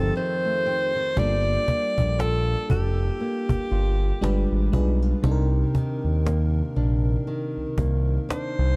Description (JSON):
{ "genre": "contemporary R&B", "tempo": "59 BPM", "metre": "4/4", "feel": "swing 58% on 16ths", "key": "G minor", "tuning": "A4 = 441 Hz", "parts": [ { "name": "clear alto saxophone", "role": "melody", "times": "0.0-8.8 s", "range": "G4 to D5", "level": "-29 LUFS", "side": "equal", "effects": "digital delay" }, { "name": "FM electric piano with soft pad layer", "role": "accompaniment", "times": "0.0-8.8 s", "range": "C3 to C5", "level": "-32 LUFS", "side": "equal", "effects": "chorus, tremolo" }, { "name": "flamenco guitar", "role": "arpeggios", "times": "0.0-8.8 s", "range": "F2 to A4", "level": "-34 LUFS", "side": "equal", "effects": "digital delay" }, { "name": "smooth gliding synth bass", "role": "bass", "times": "0.0-8.8 s", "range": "F1 to Eb2", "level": "-25 LUFS", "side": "equal", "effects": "none" }, { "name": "cajon", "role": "drums", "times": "1.2-8.6 s", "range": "none", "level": "-29 LUFS", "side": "equal", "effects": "none" } ], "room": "little or no reverb", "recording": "dark, warm production", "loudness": "-24 LUFS", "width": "mono", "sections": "0.0-1.2 A section; 1.2-8.8 B section", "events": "break 0.2-1.2", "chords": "0.0 F7; 1.2 Gm9; 4.2 G7b9; 5.2 Cm9" }